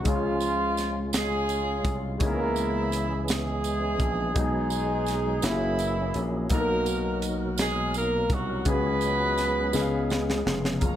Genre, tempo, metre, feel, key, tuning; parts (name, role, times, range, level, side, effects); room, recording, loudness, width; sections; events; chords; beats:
slow gospel; 56 BPM (dotted quarters); 6/8; straight; A4 = 440 Hz
mellow horn section; melody; 0.0-10.5 s; E3 to B4; -28 LUFS; right 1 dB
warm grand piano; accompaniment; 0.0-11.0 s; B2 to E#5; -31 LUFS; left 4 dB
percussive tonewheel organ; sustained chords; 0.0-11.0 s; B2 to A#4; -35 LUFS; right 2 dB; slow rotary speaker, overdrive, chorus vibrato
slap bass with an envelope filter; bass; 0.0-11.0 s; E#1 to C#2; -31 LUFS; equal
crisp fusion drum kit; drums; 0.1-11.0 s; hi-hat, kick drum, snare drum; -29 LUFS; equal
tambourine; percussion; 0.4-10.4 s; -38 LUFS; right 9 dB
warm studio string section; sustained chords; 10.8-11.0 s; C#5 to A#5; -37 LUFS; right 1 dB
light reverb; -24 LUFS; side -11 dB against mid
0.0-10.8 A section
drum fill 9.7-10.8
0.1 C#; 2.2 C#m7; 4.4 G#m7/B; 5.4 F#9; 6.5 Bmaj7; 8.7 C#7sus4; 9.7 C#7
| 0.06 1.13 | 2.21 3.29 | 4.36 5.44 | 6.51 7.59 | 8.67 9.74 | 10.82